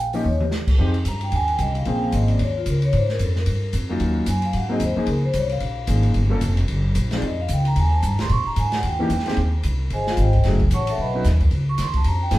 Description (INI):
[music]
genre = jazz, small-group swing and bop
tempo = 224 BPM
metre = 4/4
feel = swing 60% on 8ths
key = F minor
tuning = A4 = 442 Hz
[part]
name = vibraphone with medium mallets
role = melody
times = 0.0-12.4 s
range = F4 to Db6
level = -26 LUFS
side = equal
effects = none
[part]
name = upright bass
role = bass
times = 0.0-12.4 s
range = F1 to Bb2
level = -20 LUFS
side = equal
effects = none
[part]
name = warm concert grand piano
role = accompaniment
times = 0.1-12.4 s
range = Fb3 to B4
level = -25 LUFS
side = left 1 dB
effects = none
[part]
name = open jazz drum kit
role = drums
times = 0.1-12.4 s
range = crash cymbal, hi-hat, kick drum, ride cymbal, snare drum, toms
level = -28 LUFS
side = equal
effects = none
[sound]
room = wet studio reverb, RT60 0.8 s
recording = heard from further back in the room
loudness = -18 LUFS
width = side -16 dB against mid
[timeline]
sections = 0.8-9.4 A section; 9.4-12.4 A section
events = drum fill 0.2; vibraphone solo 0.8-12.4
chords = 0.2 Eb7(no3); 0.8 Fm9; 1.9 Bbm7; 2.4 Dbsus2; 2.9 Absus2; 4.0 Ebm9; 4.5 Ab9; 5.1 Db69; 6.2 Gm7b5; 6.7 Gbadd9; 7.2 Fsus2; 8.3 Absus4; 8.8 Eb7b9; 9.4 Abmaj7; 10.4 Gbm7; 11.0 Badd9; 11.5 Dbadd9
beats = 0.25 0.52 | 0.78 1.05 1.32 1.59 | 1.86 2.12 2.39 2.66 | 2.93 3.20 3.47 3.73 | 4.00 4.27 4.54 4.81 | 5.08 5.34 5.61 5.88 | 6.15 6.42 6.69 6.95 | 7.22 7.49 7.76 8.03 | 8.29 8.56 8.83 9.10 | 9.37 9.63 9.90 10.17 | 10.44 10.71 10.98 11.24 | 11.51 11.78 12.05 12.32